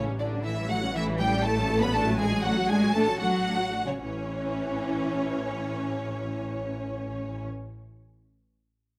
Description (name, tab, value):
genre	quick classical-period movement for string orchestra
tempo	112-121 BPM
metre	4/4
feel	straight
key	A major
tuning	A4 = 439 Hz
part	warm studio violin section	melody	0.0-7.4 s	C#5 to B5	-34 LUFS	equal	none
part	rich studio violin section	second line	0.0-7.4 s	C#4 to B4	-36 LUFS	equal	none
part	rich studio viola section	accompaniment	0.0-7.4 s	E3 to F#4	-35 LUFS	equal	none
part	bright studio double bass section	bass	0.0-7.4 s	A1	-36 LUFS	equal	none
part	rich studio cello section	bass	0.0-7.4 s	C#3 to C#4	-33 LUFS	equal	none
room	light reverb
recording	close, detailed microphones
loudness	-28 LUFS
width	mono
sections	0.0-4.0 A section; 4.0-8.2 B section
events	slowing down 0.0-4.0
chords	0.0 A7; 2.0 D/A; 4.0 A